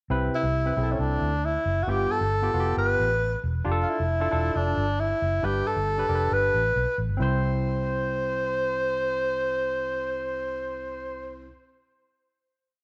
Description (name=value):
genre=uptempo 1960s-style soul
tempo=135 BPM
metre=4/4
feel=straight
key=C major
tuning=A4 = 439 Hz
part: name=barky tine electric piano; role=accompaniment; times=0.1-11.5 s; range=C2 to C5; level=-34 LUFS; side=equal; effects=none
part: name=vintage muted fingered electric bass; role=bass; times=0.1-11.5 s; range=E1 to D2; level=-30 LUFS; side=equal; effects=none
part: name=breathy tenor saxophone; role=melody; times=0.4-11.5 s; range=Db4 to C5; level=-28 LUFS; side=equal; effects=tape echo
room=light reverb, small room reverb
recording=none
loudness=-26 LUFS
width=mono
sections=0.1-7.2 A section; 7.2-10.7 final chord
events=none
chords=0.1 Cmaj7; 1.9 G7; 3.7 F6; 5.4 G; 7.2 C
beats=| 0.11 0.55 1.00 1.44 | 1.88 2.33 2.77 3.21 | 3.66 4.10 4.55 4.99 | 5.43 5.88 6.32 6.76 | 7.20 7.65 8.09 8.53 | 8.97 9.41 9.86 10.30